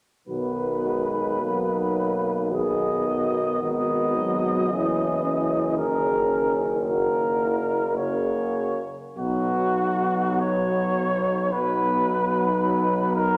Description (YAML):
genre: classical, hymn-like piece for brass band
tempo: 48-57 BPM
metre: 4/4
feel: rubato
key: B major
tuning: A4 = 440 Hz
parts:
  - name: warm cornet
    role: melody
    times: 0.3-13.4 s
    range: F#4 to D#5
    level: -28 LUFS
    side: equal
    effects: none
  - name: mellow French horn section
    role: second line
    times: 0.3-13.4 s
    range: D#4 to G#4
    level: -34 LUFS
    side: equal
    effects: none
  - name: bright trombone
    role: accompaniment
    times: 0.3-13.4 s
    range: C#3 to F#3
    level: -31 LUFS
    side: equal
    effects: none
  - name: clear euphonium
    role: accompaniment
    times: 0.3-13.4 s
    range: G#3 to C#4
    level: -32 LUFS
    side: equal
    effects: none
  - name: clear tuba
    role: bass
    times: 0.3-13.4 s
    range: F#1 to B1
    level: -32 LUFS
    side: equal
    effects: none
room: wet concert hall reverb, RT60 1.9 s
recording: none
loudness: -24 LUFS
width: mono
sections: 0.3-9.2 A section; 9.2-13.4 B section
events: none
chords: 0.3 B; 4.7 F#7; 9.2 B